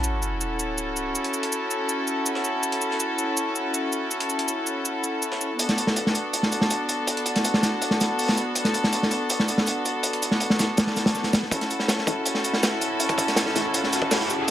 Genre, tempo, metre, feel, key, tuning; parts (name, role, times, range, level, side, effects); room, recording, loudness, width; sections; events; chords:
drum and bass, jungle; 162 BPM; 4/4; straight; F# minor; A4 = 440 Hz
rich chamber string section; sustained chords; 0.0-14.5 s; B3 to A4; -25 LUFS; left 1 dB; vintage 12-bit sampler grit, low-pass filter
breakbeat sampler-style drum kit; drums; 0.0-14.5 s; hi-hat, shaker, snare drum; -30 LUFS; right 1 dB; overdrive, high-pass filter on perc, high-pass filter on hats, high-pass filter on snare, high-pass filter on room
sub drop and riser; sound effects; 0.0-1.1, 12.3-14.5 s; -31 LUFS; equal
crunchy breakbeat drum kit; drums; 5.6-14.5 s; hi-hat, kick drum, snare drum; -23 LUFS; equal; high-pass filter on kick, high-pass filter on hats, high-pass filter on snare, high-pass filter on room
filtered dub chord stab; stabs; 12.1-13.6 s; E4 to C#5; -35 LUFS; left 3 dB
moderate lush hall reverb, RT60 1.7 s; -22 LUFS; side -11 dB against mid
0.0-11.5 A section; 11.5-14.5 B section
impact 0.0-1.1; build-up 11.5-14.5; riser 12.3-14.5
0.0 F#m7; 5.6 Bm7; 11.5 F#m7